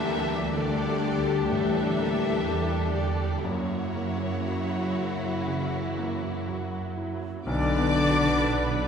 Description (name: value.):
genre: cinematic.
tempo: 58-65 BPM.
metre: 4/4.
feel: rubato.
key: unclear.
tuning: A4 = 441 Hz.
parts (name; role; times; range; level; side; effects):
warm symphonic violin section; melody; 0.0-8.9 s; C#5 to D6; -36 LUFS; left 2 dB; none.
warm symphonic violin section; second line; 0.0-8.9 s; E4 to D5; -33 LUFS; left 2 dB; none.
clear baby grand piano; accompaniment; 0.0-8.9 s; B1 to B4; -33 LUFS; left 1 dB; none.
rich symphonic viola section; accompaniment; 0.0-8.9 s; E3 to B4; -34 LUFS; right 1 dB; none.
dark French horn section; sustained chords; 0.0-8.9 s; G3 to G4; -32 LUFS; left 4 dB; none.
clear symphonic double bass section; bass; 0.0-8.9 s; B1 to F#2; -31 LUFS; right 3 dB; none.
rich symphonic cello section; bass; 0.0-8.9 s; C#3 to E3; -32 LUFS; left 1 dB; none.
bright silver concert flute; second line; 7.5-8.9 s; D5; -32 LUFS; left 2 dB; none.
warm cor anglais; second line; 7.5-8.9 s; D4; -33 LUFS; left 2 dB; none.
room: wet scoring stage reverb, RT60 1.9 s.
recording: heard from further back in the room.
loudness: -24 LUFS.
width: side -7 dB against mid.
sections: 0.0-7.5 A section; 7.5-8.9 B section.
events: none.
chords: 0.0 Gmadd9/D; 3.4 F#7; 7.5 Bm.